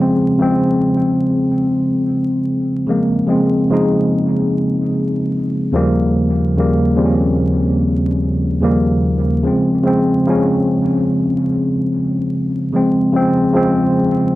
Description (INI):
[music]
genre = hip hop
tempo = 73 BPM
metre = 4/4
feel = swing 65% on 16ths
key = Bb dorian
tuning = A4 = 440 Hz
[part]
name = tine electric piano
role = solo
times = 0.0-14.4 s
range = Eb2 to Eb4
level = -13 LUFS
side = equal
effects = medium stereo tremolo, low-pass filter, tape echo
[sound]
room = wet small room reverb, RT60 0.6 s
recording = vinyl crackle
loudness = -14 LUFS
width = side -17 dB against mid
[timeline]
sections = 0.0-12.7 A section; 12.7-14.4 B section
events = none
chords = 0.0 Bbm9; 5.8 Eb7; 9.4 Dbmaj7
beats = 0.41 1.23 2.05 | 2.88 3.70 4.52 5.34 | 6.16 6.98 7.81 8.63 | 9.45 10.27 11.09 11.92 | 12.74 13.56